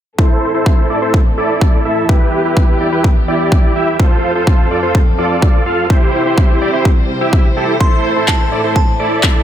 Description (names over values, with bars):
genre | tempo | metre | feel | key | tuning
EDM, festival progressive house | 126 BPM | 4/4 | straight | A minor | A4 = 440 Hz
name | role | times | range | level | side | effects
dark chamber string section | sustained chords | 0.2-9.4 s | E2 to C5 | -22 LUFS | equal | sidechain pumping, low-pass filter
big supersaw lead | riff | 0.2-9.4 s | E4 to F5 | -15 LUFS | right 1 dB | sidechain pumping, low-pass filter, tape echo
electronic kick drum | drums | 0.2-9.3 s | none | -11 LUFS | equal | none
glassy synth bell | melody | 7.8-9.4 s | A5 to C6 | -20 LUFS | right 1 dB | chorus, tape echo
electronic handclaps | drums | 8.3-9.3 s | none | -18 LUFS | left 1 dB | low-pass filter on snare, low-pass filter on room
room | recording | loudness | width
digital ambience | none | -11 LUFS | side -10 dB against mid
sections
0.2-9.4 A section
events
filter sweep on string section 0.2-9.4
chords
0.2 Am; 2.1 Em; 4.0 F; 5.9 C; 7.8 Am